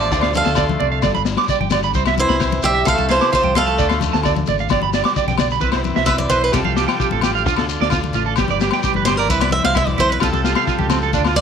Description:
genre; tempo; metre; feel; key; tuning
highlife guitar band; 131 BPM; 4/4; straight; C major; A4 = 440 Hz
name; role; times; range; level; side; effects
picked swing-style acoustic guitar; melody; 0.0-11.4 s; E4 to F5; -19 LUFS; right 3 dB; none
brilliant trombone; second line; 0.0-4.4 s; E3 to A3; -27 LUFS; left 10 dB; none
clean electric guitar; accompaniment; 0.0-11.4 s; G2 to A4; -28 LUFS; left 12 dB; none
electric guitar at the edge of break-up; arpeggios; 0.0-11.3 s; C4 to D6; -21 LUFS; right 15 dB; vibrato effect, slapback echo
fingered electric bass; bass; 0.0-11.4 s; G1 to D2; -22 LUFS; equal; none
shekere; percussion; 0.0-11.4 s; none; -29 LUFS; left 8 dB; none
crunchy breakbeat drum kit; drums; 0.1-11.4 s; kick drum, snare drum; -23 LUFS; left 5 dB; none
agogo bells; percussion; 0.2-11.4 s; none; -27 LUFS; left 15 dB; none
congas; percussion; 0.4-11.4 s; none; -27 LUFS; left 9 dB; none
combo organ; sustained chords; 5.6-11.4 s; C4 to B4; -28 LUFS; right 1 dB; none
room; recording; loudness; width
small room ambience; 1960s-style stereo with parts hard left and right; -15 LUFS; side -7 dB against mid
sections
0.0-5.6 A section; 5.6-11.4 B section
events
steel-string acoustic guitar solo 5.6-11.4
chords
0.1 Dm; 1.0 G; 1.9 Cmaj7; 2.9 F/C; 3.8 Dm; 4.7 G; 5.6 Cmaj7; 6.5 Fadd9/C; 7.5 Dm; 8.4 G; 9.3 Cmaj7; 10.2 Fadd9/C

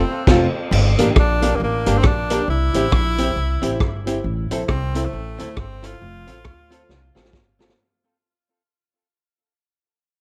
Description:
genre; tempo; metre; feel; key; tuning
ska; 136 BPM; 4/4; swing 61% on 8ths; unclear; A4 = 442 Hz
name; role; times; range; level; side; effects
edgy tenor saxophone; melody; 0.0-7.3 s; A3 to F4; -28 LUFS; equal; dub echo
archtop guitar, miked and amplified; accompaniment; 0.0-7.7 s; Bb3 to A4; -27 LUFS; equal; dub echo
dark upright piano; stabs; 0.3-7.7 s; D4 to C5; -28 LUFS; equal; none
upright bass; bass; 0.3-7.7 s; F1 to D2; -24 LUFS; equal; none
vintage drum kit; drums; 0.3-7.8 s; crash cymbal, hi-hat, kick drum, rim click, snare drum; -22 LUFS; equal; none
room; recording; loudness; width
little or no reverb; none; -19 LUFS; mono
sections
0.7-7.8 A section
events
band accent 0.0-0.7; fade-out 0.7-7.8; drum fill 6.9-7.8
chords
0.0 F; 0.7 Gm; 2.5 C; 4.2 Am; 6.0 F

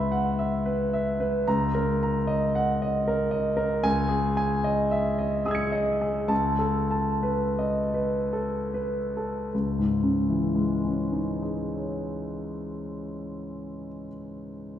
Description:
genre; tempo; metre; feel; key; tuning
classical, impressionist solo piano; 46-78 BPM; 3/4; rubato; C# minor; A4 = 440 Hz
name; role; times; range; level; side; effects
clear concert grand piano; solo; 0.0-14.8 s; C#2 to C#7; -24 LUFS; equal; none
room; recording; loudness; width
wet scoring stage reverb, RT60 1.5 s; heard from further back in the room; -24 LUFS; side -10 dB against mid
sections
0.0-9.5 A section; 9.5-12.6 B section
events
slowing down 2.7-9.5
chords
0.0 C#m7; 1.5 D#m7/C#; 3.8 C#madd9; 6.3 B9/C#; 9.5 C#madd9

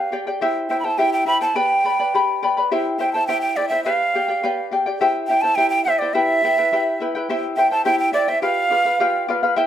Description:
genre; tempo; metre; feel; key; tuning
andean folk, Andean ensemble; 105 BPM; 2/4; straight; unclear; A4 = 440 Hz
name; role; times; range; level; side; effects
breathy hollow quena; melody; 0.0-9.2 s; D5 to B5; -18 LUFS; right 2 dB; none
charango; accompaniment; 0.0-9.7 s; E4 to B5; -20 LUFS; left 2 dB; none
room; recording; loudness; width
light reverb; close, detailed microphones; -17 LUFS; side -10 dB against mid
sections
0.0-7.3 A section; 7.3-9.7 A section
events
none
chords
0.4 C; 1.6 G; 2.7 C; 3.9 G7; 5.0 C; 6.1 Em; 7.3 C; 8.4 G7

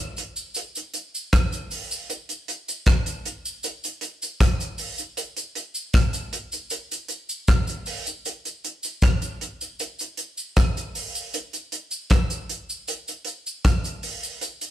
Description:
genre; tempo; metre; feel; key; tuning
reggae; 78 BPM; 4/4; straight; none; none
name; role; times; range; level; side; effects
damped 70s drum kit; drums; 0.2-14.7 s; hi-hat, kick drum, rim click; -22 LUFS; equal; none
cabasa; percussion; 0.2-14.7 s; none; -32 LUFS; equal; none
room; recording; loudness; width
wet stone room reverb, RT60 1.1 s; band playing live in one room; -24 LUFS; side -12 dB against mid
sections
0.0-8.3 A section; 8.3-14.7 B section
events
none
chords
none

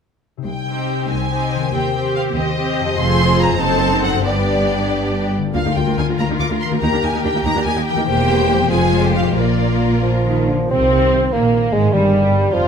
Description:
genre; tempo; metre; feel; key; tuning
classical, dramatic, fast romantic movement for symphony orchestra; 85-100 BPM (dotted quarters); 6/8; rubato; C minor, Eb major from 5.6 s; A4 = 441 Hz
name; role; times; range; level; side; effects
concert harp; arpeggios; 0.4-12.7 s; F2 to C5; -23 LUFS; left 11 dB; none
rich symphonic violin section; melody; 0.5-12.7 s; G3 to D6; -23 LUFS; left 2 dB; none
rich symphonic cello section; bass; 0.5-12.7 s; C2 to Eb3; -22 LUFS; right 2 dB; none
warm studio double bass section; bass; 0.5-12.7 s; E1 to Eb2; -22 LUFS; right 4 dB; none
rich symphonic violin section; second line; 0.7-12.7 s; G3 to D5; -24 LUFS; left 2 dB; none
rich symphonic viola section; accompaniment; 0.7-12.7 s; F3 to G4; -22 LUFS; right 2 dB; none
mellow bassoon; accompaniment; 10.0-12.7 s; F3 to C4; -18 LUFS; right 1 dB; none
timpani; percussion; 11.9-12.5 s; Eb3; -26 LUFS; left 2 dB; none
room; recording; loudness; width
moderate recital hall reverb, RT60 1.8 s; none; -14 LUFS; side -7 dB against mid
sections
0.5-10.7 A section; 10.7-12.7 B section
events
none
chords
0.5 Cm; 1.7 Cm/Eb; 3.0 Fm; 3.6 F#dim7; 4.3 G; 5.6 Bb/D; 6.8 Eb; 8.1 C7/E; 8.7 Fm; 9.4 Bb; 10.7 Eb; 11.9 Bb7

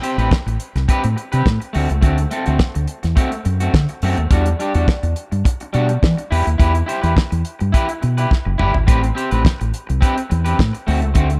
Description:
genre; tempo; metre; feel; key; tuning
disco; 105 BPM; 4/4; straight; A dorian; A4 = 440 Hz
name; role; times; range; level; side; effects
electric guitar at the edge of break-up; accompaniment; 0.0-11.3 s; G3 to C5; -24 LUFS; equal; spring reverb
damped 70s drum kit; drums; 0.0-11.4 s; hi-hat, kick drum, snare drum, toms; -19 LUFS; equal; none
fingered electric bass; bass; 0.2-11.4 s; F#1 to E3; -20 LUFS; equal; none
room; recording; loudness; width
little or no reverb; none; -18 LUFS; mono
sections
0.0-11.4 A section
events
drum fill 8.3-8.9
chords
0.0 Am9; 1.7 D7; 4.3 Em9; 6.3 Cmaj7 (rootless); 8.9 Am9; 10.9 D7

